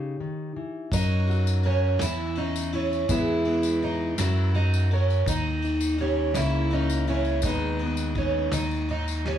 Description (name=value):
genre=acoustic folk duo or small band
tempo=55 BPM (dotted quarters)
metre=6/8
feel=straight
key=unclear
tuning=A4 = 440 Hz
part: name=fingerpicked plugged-in steel-string acoustic guitar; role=accompaniment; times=0.0-9.4 s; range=C#3 to B4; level=-28 LUFS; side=left 3 dB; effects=none
part: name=fingerpicked twelve-string acoustic guitar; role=arpeggios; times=0.9-9.4 s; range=C#4 to E4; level=-29 LUFS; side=right 5 dB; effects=none
part: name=fingered electric bass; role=bass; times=0.9-9.4 s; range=C#2 to F#2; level=-26 LUFS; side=equal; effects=none
part: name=soft brush drum kit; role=drums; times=0.9-9.4 s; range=kick drum, ride cymbal, snare drum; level=-34 LUFS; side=equal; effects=none
part: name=tambourine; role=percussion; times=0.9-9.2 s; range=none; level=-38 LUFS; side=left 6 dB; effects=none
room=light reverb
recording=small room ambience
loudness=-23 LUFS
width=side -10 dB against mid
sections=0.0-9.4 A section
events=none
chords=0.0 D#; 0.9 F#; 2.0 C#m/E; 3.1 E; 4.2 F#; 5.3 D#; 6.4 A#dim/C#; 7.4 G#m/D#; 8.5 D#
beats=| 0.92 2.01 | 3.10 4.18 | 5.27 6.35 | 7.44 8.53